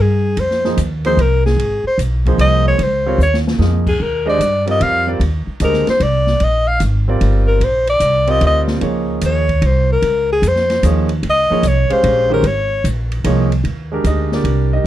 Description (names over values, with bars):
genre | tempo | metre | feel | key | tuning
modal jazz | 149 BPM | 3/4 | swing 67% on 8ths | unclear | A4 = 439 Hz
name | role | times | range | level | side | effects
clear alto saxophone | melody | 0.0-12.9 s | Ab4 to F5 | -16 LUFS | left 1 dB | none
upright bass | bass | 0.0-14.9 s | G1 to G2 | -16 LUFS | equal | none
open jazz drum kit | drums | 0.4-14.6 s | crash cymbal, hi-hat, kick drum, ride cymbal, snare drum | -27 LUFS | left 1 dB | none
warm concert grand piano | accompaniment | 0.7-14.9 s | Eb3 to F5 | -20 LUFS | right 3 dB | none
room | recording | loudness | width
light reverb | dark, warm production | -13 LUFS | side -13 dB against mid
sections
0.0-13.7 A section; 13.7-14.9 A section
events
alto saxophone solo 0.0-13.7; drum fill 3.2-3.6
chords
0.0 Dbmaj9; 4.0 Ebmaj9; 8.8 Dbmaj9; 13.7 Ebmaj7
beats
| 0.38 0.78 1.18 | 1.58 1.99 2.39 | 2.79 3.19 3.60 | 4.00 4.40 4.80 | 5.21 5.61 6.01 | 6.41 6.81 7.21 | 7.62 8.02 8.42 | 8.82 9.22 9.63 | 10.03 10.43 10.83 | 11.23 11.64 12.04 | 12.44 12.85 13.25 | 13.65 14.05 14.46 | 14.86